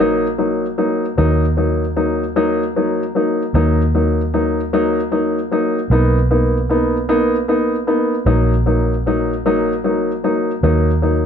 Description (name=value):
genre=pop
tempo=51 BPM (dotted quarters)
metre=6/8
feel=straight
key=unclear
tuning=A4 = 440 Hz
part: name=warm baby grand piano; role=accompaniment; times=0.0-11.3 s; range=F#3 to D#4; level=-16 LUFS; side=left 1 dB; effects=none
part: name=vintage muted fingered electric bass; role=bass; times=0.0-11.3 s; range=A#1 to D#2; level=-18 LUFS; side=right 1 dB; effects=none
room=moderate echo chamber reverb, RT60 1.3 s, small room reverb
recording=dark, warm production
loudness=-14 LUFS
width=side -7 dB against mid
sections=0.0-11.3 A section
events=none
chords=0.0 F#6/A#; 1.2 D#m; 5.9 Bmaj7; 8.3 F#6/A#; 10.6 D#m